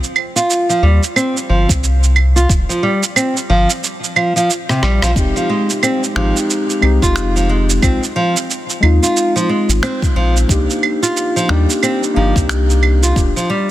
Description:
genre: organic downtempo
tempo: 90 BPM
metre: 4/4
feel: swing 59% on 16ths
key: unclear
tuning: A4 = 440 Hz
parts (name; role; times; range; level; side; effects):
- electronic cabasa, claves, rim click and finger snaps; drums; 0.0-13.5 s; none; -19 LUFS; right 5 dB; soft clipping on snare
- nylon-string guitar; arpeggios; 0.4-13.7 s; C3 to F4; -17 LUFS; right 1 dB; low-pass filter, tape echo
- warm sub bass; bass; 0.8-13.3 s; Eb1 to Eb2; -14 LUFS; equal; sidechain pumping
- electronic kick drum; drums; 1.7-13.3 s; none; -17 LUFS; equal; none
- muted felt-like synth keys; accompaniment; 5.1-13.3 s; Ab3 to G4; -19 LUFS; left 2 dB; chorus, sidechain pumping, tape echo
room: light reverb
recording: dense, heavily limited modern master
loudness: -12 LUFS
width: side -14 dB against mid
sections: 0.0-13.7 A section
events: kick drops out 4.5-5.2; drum fill 4.7-5.2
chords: 0.0 C5; 2.5 Eb (rootless); 5.2 Fm7; 7.8 Bb7sus4; 10.5 Cm7; 13.2 Ebmaj7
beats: 0.49 1.16 1.83 | 2.50 3.16 3.83 4.50 | 5.16 5.83 6.50 7.16 | 7.83 8.49 9.16 9.83 | 10.49 11.16 11.83 12.49 | 13.16

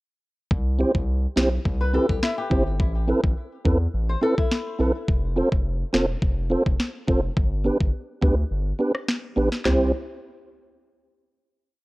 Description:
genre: dancehall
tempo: 105 BPM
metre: 4/4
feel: straight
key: C major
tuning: A4 = 444 Hz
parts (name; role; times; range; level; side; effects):
- round analog bass; bass; 0.5-9.9 s; E1 to E2; -25 LUFS; equal; none
- island pop drum kit; drums; 0.5-9.8 s; handclaps, kick drum, rim click, snare drum, toms; -24 LUFS; equal; overdrive
- mellow tonewheel organ; accompaniment; 0.8-9.9 s; B3 to C5; -24 LUFS; right 1 dB; chorus vibrato, stopped rotary speaker
- flamenco guitar; arpeggios; 1.8-5.0 s; E4 to C5; -29 LUFS; left 4 dB; digital delay
room: little or no reverb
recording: worn, warbling old tape, cassette tape, warbly pitch drift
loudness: -21 LUFS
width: side -21 dB against mid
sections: 0.5-9.7 verse; 9.7-11.8 final chord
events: break 8.5-9.7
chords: 0.5 C; 2.8 Amadd9; 5.1 F; 7.4 G; 9.7 C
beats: | 0.51 1.08 1.65 2.23 | 2.80 3.37 3.94 4.51 | 5.08 5.65 6.22 6.80 | 7.37 7.94 8.51 9.08 | 9.65

